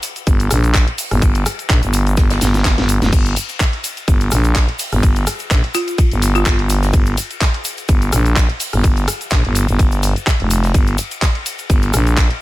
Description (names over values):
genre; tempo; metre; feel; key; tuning
bass house; 126 BPM; 4/4; swing 55% on 16ths; G minor; A4 = 440 Hz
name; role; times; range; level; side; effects
garage drum kit; drums; 0.0-12.4 s; crash cymbal, handclaps, hi-hat, ride cymbal, rim click, snare drum; -22 LUFS; equal; none
unplugged drum kit; drums; 0.0-12.4 s; hi-hat, ride cymbal, snare drum; -29 LUFS; left 3 dB; high-pass filter on cymbals, high-pass filter on hats, high-pass filter on snare, high-pass filter on room
tube shaker; percussion; 0.0-12.3 s; none; -28 LUFS; equal; none
growling FM bass; bass; 0.3-12.3 s; F1 to Bb1; -16 LUFS; equal; overdrive, sidechain pumping
electronic kick drum; drums; 0.3-12.3 s; none; -14 LUFS; equal; none
folk marimba with medium hard mallets; melody; 5.7-6.7 s; F4; -22 LUFS; equal; ping-pong delay
room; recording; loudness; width
studio reverb; none; -13 LUFS; side -17 dB against mid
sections
0.0-12.4 A section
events
drum fill 2.4-3.1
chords
0.0 Gm